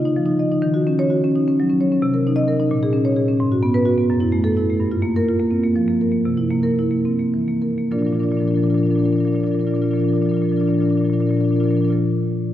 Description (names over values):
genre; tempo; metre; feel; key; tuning
classical, contemporary piece for solo marimba; 66-88 BPM (dotted quarters); 6/8; rubato; Bb major; A4 = 435 Hz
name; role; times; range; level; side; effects
marimba with soft mallets; solo; 0.0-12.0 s; Gb2 to Eb5; -16 LUFS; equal; none
room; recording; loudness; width
wet church reverb, RT60 3.4 s; dark, warm production; -16 LUFS; side -12 dB against mid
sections
0.0-7.9 A section; 7.9-11.3 B section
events
slowing down 4.1-7.9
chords
0.0 Dbadd9; 0.6 Ebm7; 2.0 Cm7; 2.7 Bbm7; 3.4 Abm7; 4.1 Gbm7; 4.8 Gm7; 6.3 C7; 7.9 Bb